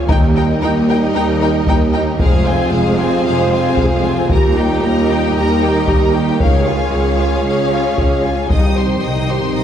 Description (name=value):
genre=cinematic, epic orchestral film score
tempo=114 BPM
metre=4/4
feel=straight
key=unclear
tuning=A4 = 440 Hz
part: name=mellow French horn section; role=sustained chords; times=0.0-9.6 s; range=Bb3 to G4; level=-23 LUFS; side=left 1 dB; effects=none
part: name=mellow trombone section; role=sustained chords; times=0.0-9.6 s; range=C3 to Ab3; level=-23 LUFS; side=right 3 dB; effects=none
part: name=rich studio string section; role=sustained chords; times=0.0-9.6 s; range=C4 to G5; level=-22 LUFS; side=equal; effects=none
part: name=clear symphonic double bass section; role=bass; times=0.0-9.6 s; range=F1 to Eb2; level=-21 LUFS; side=right 2 dB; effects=none
part: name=rich symphonic cello section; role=bass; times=0.0-9.6 s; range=C2 to F2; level=-20 LUFS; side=right 2 dB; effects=none
part: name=rich symphonic violin section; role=melody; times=0.1-9.6 s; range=F5 to Eb6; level=-24 LUFS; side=left 4 dB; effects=none
part: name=clear studio violin section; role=second line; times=0.1-9.6 s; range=F4 to F5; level=-24 LUFS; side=left 3 dB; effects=none
part: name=warm symphonic viola section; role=accompaniment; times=0.1-9.6 s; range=Ab3 to Ab4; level=-23 LUFS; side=right 1 dB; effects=none
part: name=solo taiko drums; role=drums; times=0.1-9.0 s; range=none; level=-17 LUFS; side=left 1 dB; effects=none
part: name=timpani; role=percussion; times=8.5-9.6 s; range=C3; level=-25 LUFS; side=equal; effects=none
room=wet scoring stage reverb, RT60 1.8 s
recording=heard from further back in the room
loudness=-12 LUFS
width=side -9 dB against mid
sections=0.0-9.6 A section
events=timpani fill 8.5-9.6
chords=0.1 Eb; 2.2 Fm; 4.3 Eb; 6.4 Db; 8.5 Cm